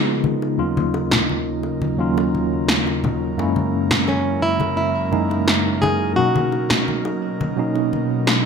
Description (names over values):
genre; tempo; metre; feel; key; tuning
sunset chillout; 86 BPM; 4/4; straight; F# major; A4 = 439 Hz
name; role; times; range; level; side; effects
tine electric piano; accompaniment; 0.0-8.5 s; D#2 to G#4; -21 LUFS; moving between left 4 dB and right 4 dB; medium stereo tremolo, auto-pan, ping-pong delay
airy breathy pad; sustained chords; 0.0-8.5 s; B2 to A#4; -26 LUFS; right 1 dB; chorus
congas and bongos; percussion; 0.2-8.4 s; none; -27 LUFS; left 4 dB; none
electronic snare drum; drums; 1.1-8.4 s; none; -19 LUFS; right 1 dB; overdrive, gated reverb
flamenco guitar; melody; 4.1-8.2 s; C#4 to G#4; -22 LUFS; right 1 dB; ping-pong delay
room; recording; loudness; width
wet plate reverb, RT60 1.4 s; bright 1980s-style digital production; -17 LUFS; side -6 dB against mid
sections
0.0-8.5 A section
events
filter sweep on analog synth pad 0.0-8.5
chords
0.0 C#13; 0.6 D#m7; 3.4 F#7; 6.2 Bmaj7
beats
| 0.59 1.29 1.99 2.69 | 3.38 4.08 4.78 5.48 | 6.17 6.87 7.57 8.27